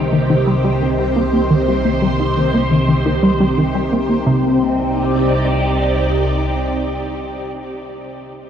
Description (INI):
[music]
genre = ambient, sequencer-driven space music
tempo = 87 BPM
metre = 4/4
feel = straight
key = C minor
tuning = A4 = 440 Hz
[part]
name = phased string machine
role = sustained chords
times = 0.0-7.8 s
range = C3 to D5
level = -18 LUFS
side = equal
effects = ensemble chorus, phaser
[part]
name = tight sequenced synth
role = riff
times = 0.0-4.6 s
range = C3 to G4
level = -18 LUFS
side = equal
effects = chorus, vintage 12-bit sampler grit, ping-pong delay
[part]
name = analog drone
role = bass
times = 0.0-6.3 s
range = C2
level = -23 LUFS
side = equal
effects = chorus, phaser
[sound]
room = wet huge ambient reverb, RT60 8.1 s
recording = worn, warbling old tape, cassette tape, warbly pitch drift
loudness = -14 LUFS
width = side -8 dB against mid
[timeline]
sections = 0.0-4.3 A section; 4.3-7.0 B section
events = none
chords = 0.0 Eb/C; 4.3 Cmadd9